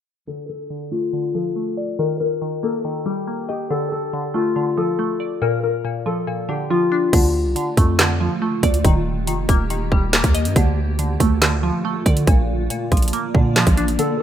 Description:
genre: hip hop, drill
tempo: 140 BPM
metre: 4/4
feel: half-time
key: D phrygian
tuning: A4 = 440 Hz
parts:
  - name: concert harp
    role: melody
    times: 0.3-9.2, 14.0-14.2 s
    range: F4 to Bb4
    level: -22 LUFS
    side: left 5 dB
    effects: low-pass filter
  - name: glassy wavetable pluck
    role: accompaniment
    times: 0.3-14.2 s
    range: Bb2 to Eb5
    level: -24 LUFS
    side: right 1 dB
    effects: chorus, low-pass filter
  - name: granular cloud pad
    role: sustained chords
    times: 7.6-14.2 s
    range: D3 to D5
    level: -27 LUFS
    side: right 1 dB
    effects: built-in reverb
  - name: long sustained 808-style bass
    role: bass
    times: 7.1-14.0 s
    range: Eb1 to D3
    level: -21 LUFS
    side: right 1 dB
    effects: none
  - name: drill drum kit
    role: drums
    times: 7.1-14.1 s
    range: crash cymbal, handclaps, hi-hat, kick drum, snare drum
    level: -17 LUFS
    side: right 1 dB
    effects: none
room: light reverb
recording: rough home demo mix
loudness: -17 LUFS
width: side -10 dB against mid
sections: 0.3-7.1 A section; 7.1-14.2 B section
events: filter sweep 0.3-7.1; kick muted 14.0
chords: 0.3 Dm; 2.0 Eb; 3.7 Dm; 5.4 Bb; 7.1 Dm; 8.8 Eb; 10.6 Dm; 12.3 Bb

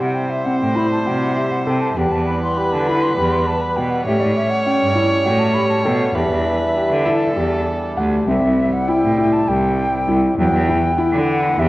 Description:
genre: contemporary instrumental, chamber music in an uneven meter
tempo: 200 BPM (eighths)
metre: 7/8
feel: straight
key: E minor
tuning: A4 = 440 Hz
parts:
  - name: hollow concert flute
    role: melody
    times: 0.0-11.7 s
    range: D5 to C6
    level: -22 LUFS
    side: left 1 dB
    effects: none
  - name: warm viola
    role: second line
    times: 0.0-8.3 s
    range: G4 to C#5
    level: -22 LUFS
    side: right 1 dB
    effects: none
  - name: hand-pumped harmonium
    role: sustained chords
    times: 0.0-11.7 s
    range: C3 to E4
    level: -25 LUFS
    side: right 1 dB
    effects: none
  - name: dark grand piano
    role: arpeggios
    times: 0.0-11.7 s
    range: F#3 to F#5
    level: -21 LUFS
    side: left 1 dB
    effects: none
  - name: clear cello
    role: bass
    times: 0.0-11.7 s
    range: C2 to D3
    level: -20 LUFS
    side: right 1 dB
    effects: none
room: wet concert hall reverb, RT60 1.6 s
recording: worn, warbling old tape, cassette tape, warbly pitch drift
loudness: -15 LUFS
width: side -18 dB against mid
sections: 0.0-8.3 A section; 8.3-11.7 B section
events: none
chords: 0.0 C; 2.0 Em; 4.1 A7; 6.2 Em7; 8.3 C; 10.4 Em

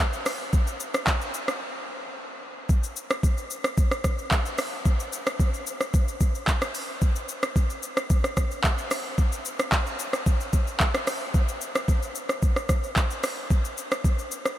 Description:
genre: amapiano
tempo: 111 BPM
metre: 4/4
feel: straight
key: none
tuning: none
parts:
  - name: smooth R&B drum kit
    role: drums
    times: 0.1-14.6 s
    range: handclaps, hi-hat, kick drum, rim click, shaker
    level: -23 LUFS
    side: equal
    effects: overdrive
room: moderate huge ambient reverb, RT60 8.1 s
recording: dreamy mix soaked in reverb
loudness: -23 LUFS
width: side -13 dB against mid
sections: 0.0-14.6 A section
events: break 1.6-2.7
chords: none

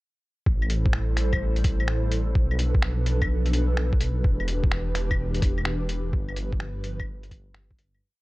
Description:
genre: future garage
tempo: 127 BPM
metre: 4/4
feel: swing 67% on 16ths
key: A minor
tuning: A4 = 440 Hz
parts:
  - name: airy breathy pad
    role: sustained chords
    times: 0.5-8.0 s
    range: E3 to C5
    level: -32 LUFS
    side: equal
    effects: chorus, sidechain pumping
  - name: dark detuned saw bass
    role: bass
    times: 0.5-8.0 s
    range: E1 to B1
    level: -26 LUFS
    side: equal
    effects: sidechain pumping
  - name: electronic kick drum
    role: drums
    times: 0.5-7.8 s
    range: none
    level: -24 LUFS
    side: equal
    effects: none
  - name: lo-fi sampler-style drum kit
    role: drums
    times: 0.6-8.0 s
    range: claves, finger snaps, hi-hat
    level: -32 LUFS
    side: left 1 dB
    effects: none
room: little or no reverb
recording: dry, gritty hardware recording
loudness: -22 LUFS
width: side -20 dB against mid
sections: 0.5-8.0 groove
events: fade-out 5.5-8.0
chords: 0.5 Am7; 2.4 Bm7b5; 4.2 Em7; 6.1 G7

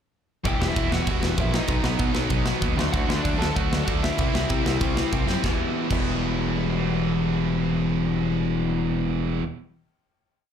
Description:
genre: punk rock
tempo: 192 BPM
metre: 4/4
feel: straight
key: E minor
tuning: A4 = 440 Hz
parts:
  - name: distorted electric guitar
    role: riff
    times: 0.4-9.4 s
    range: B2 to E4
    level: -31 LUFS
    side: left 1 dB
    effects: overdrive, slapback echo
  - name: overdriven semi-hollow guitar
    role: riff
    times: 0.4-9.4 s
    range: B2 to E4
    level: -29 LUFS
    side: left 11 dB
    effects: none
  - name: growling picked electric bass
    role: bass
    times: 0.4-9.4 s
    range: E1 to C3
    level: -27 LUFS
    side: equal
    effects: overdrive
  - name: overdriven semi-hollow guitar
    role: melody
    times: 0.5-5.1 s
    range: D4 to A5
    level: -30 LUFS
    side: equal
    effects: slapback echo
  - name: tight distorted guitar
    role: riff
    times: 0.5-9.4 s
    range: E2 to D4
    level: -29 LUFS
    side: right 13 dB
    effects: distortion, slapback echo
  - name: tight metal drum kit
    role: drums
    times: 0.5-6.0 s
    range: crash cymbal, kick drum, snare drum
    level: -26 LUFS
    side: equal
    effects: none
room: little or no reverb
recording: live gig heard through the venue's PA, club reverb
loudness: -21 LUFS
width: side -8 dB against mid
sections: 0.5-5.4 riff; 5.4-7.9 final chord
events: drum fill 5.3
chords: 0.5 Em; 1.7 B; 2.8 D; 4.2 C; 5.4 Em

